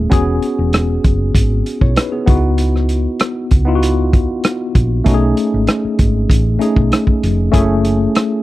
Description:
lush 1970s-style soul; 97 BPM; 4/4; straight; C# minor; A4 = 442 Hz
tine electric piano; accompaniment; 0.0-8.4 s; A3 to C#5; -17 LUFS; left 1 dB; medium stereo tremolo
hollow-body short-scale fingered electric bass; bass; 0.0-8.1 s; E1 to C#2; -16 LUFS; equal
vintage drum kit; drums; 0.1-8.3 s; hi-hat, kick drum, rim click; -14 LUFS; equal
little or no reverb; dry, close 1970s-style studio recording; -12 LUFS; side -16 dB against mid
0.0-8.4 A section
0.1 E69; 2.3 C#m11; 5.1 B13; 7.5 F#m9

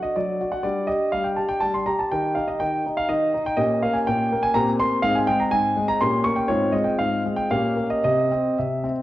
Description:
classical-period piano sonatina; 123 BPM; 3/4; rubato; A4 = 440 Hz
warm concert grand piano; solo; 0.0-9.0 s; Ab2 to Db6; -20 LUFS; equal
wet recital hall reverb, RT60 1.5 s; worn, warbling old tape, cassette tape, warbly pitch drift; -20 LUFS; side -15 dB against mid
0.0-9.0 A section
0.0 D/F#; 0.6 G5; 2.1 Eb; 3.6 Gdim/Bb; 4.6 C5/Bb; 5.0 Abmaj9; 6.0 Gdim/Bb; 6.5 Fm/Ab; 7.5 Gm7b5/Bb; 8.0 C

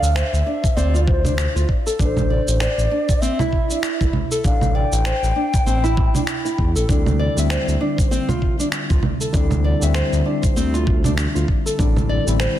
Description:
organic downtempo; 98 BPM; 4/4; swing 57% on 16ths; D minor; A4 = 440 Hz
breathy mellow low ney; melody; 0.0-6.6 s; C5 to G5; -25 LUFS; left 2 dB; ping-pong delay
smooth gliding synth bass; bass; 0.0-12.5 s; A1 to E2; -20 LUFS; equal
electronic cabasa, finger snaps and congas; drums; 0.0-12.5 s; -25 LUFS; right 3 dB; soft clipping on snare
nylon-string guitar; arpeggios; 0.2-12.6 s; C4 to D5; -24 LUFS; equal; ping-pong delay
electronic kick drum; drums; 0.6-11.9 s; -19 LUFS; equal
tine electric piano; accompaniment; 6.9-12.6 s; D3 to E5; -26 LUFS; left 3 dB; medium stereo tremolo, sidechain pumping, ping-pong delay
light reverb; dense, heavily limited modern master; -16 LUFS; side -12 dB against mid
0.0-12.6 A section
0.0 Dm7; 2.0 Am7; 6.9 Dm7; 11.8 Am7

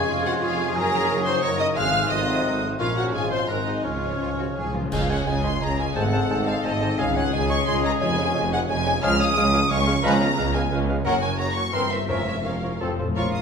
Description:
classical, dramatic, fast romantic movement for symphony orchestra; 176 BPM; 3/4; straight; Db major; A4 = 440 Hz
warm studio violin section; melody; 0.0-13.4 s; Db5 to F6; -30 LUFS; left 2 dB
concert flute; second line; 0.0-13.4 s; Eb5 to Ab6; -30 LUFS; equal
mellow clarinet; second line; 0.0-13.4 s; Db4 to F5; -33 LUFS; left 2 dB
warm cor anglais; second line; 0.0-13.4 s; Bb4 to A5; -34 LUFS; right 3 dB
warm symphonic violin section; second line; 0.0-13.3 s; Db4 to F6; -32 LUFS; left 2 dB
dark bassoon; accompaniment; 0.0-13.4 s; E3 to Bb3; -33 LUFS; right 2 dB
warm symphonic viola section; accompaniment; 0.0-13.3 s; Ab3 to F5; -32 LUFS; right 1 dB
dark French horn section; sustained chords; 0.0-13.4 s; Eb3 to F4; -31 LUFS; left 4 dB
concert harp; arpeggios; 0.0-13.4 s; F2 to Db5; -30 LUFS; left 2 dB
rich studio double bass section; bass; 0.0-13.4 s; F1 to Gb2; -30 LUFS; right 2 dB
rich symphonic cello section; bass; 0.0-13.4 s; Db2 to Bb4; -31 LUFS; right 2 dB
warm tuba; bass; 0.0-13.4 s; F1 to Db2; -30 LUFS; right 3 dB
timpani; percussion; 1.8-4.9, 12.1-13.1 s; F2 to Db3; -33 LUFS; left 1 dB
cymbal swell, clash cymbals and concert bass drum; percussion; 2.8-5.6 s; -35 LUFS; equal
warm trumpet section; stabs; 4.9-13.4 s; Ab4 to Cb5; -33 LUFS; left 1 dB
wet recital hall reverb, RT60 1.4 s; minimal, uncompressed stereo recording; -20 LUFS; side -6 dB against mid
0.0-4.9 A section; 4.9-13.2 A section
timpani fill 3.9-4.9, 12.8-13.2; band accent 4.9-5.3
0.0 Db/F; 0.8 Ebm7/Gb; 1.8 Ab7b9; 2.8 Bbm; 3.1 Db/Ab; 3.5 Ab9; 3.9 Db; 6.0 Ab7b9; 7.0 Db; 8.0 Db/F; 9.0 Db; 10.0 Db7; 11.1 Gb; 11.7 C7/G; 12.1 Bbm/F; 12.8 F

